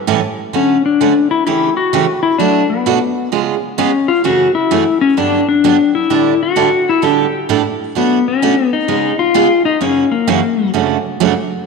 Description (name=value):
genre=country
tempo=129 BPM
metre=4/4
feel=swing 66% on 8ths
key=D major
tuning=A4 = 437 Hz
part: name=clean lap steel guitar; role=melody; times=0.0-10.7 s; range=A#3 to G4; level=-13 LUFS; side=left 6 dB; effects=none
part: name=picked steel-string acoustic guitar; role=accompaniment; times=0.1-11.3 s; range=F#2 to A4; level=-16 LUFS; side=right 11 dB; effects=none
room=wet echo chamber reverb, RT60 2.3 s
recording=1960s-style stereo with parts hard left and right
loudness=-12 LUFS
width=side -4 dB against mid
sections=0.5-11.7 A section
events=none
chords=0.0 A7; 0.5 Dmaj7; 1.5 A7/C#; 2.4 Bm7; 3.3 C#7; 4.2 F#m7; 5.2 Gmaj7; 6.1 A7sus4; 8.0 Bm7; 8.9 C#7; 9.8 F#7; 10.7 Dmaj7/F#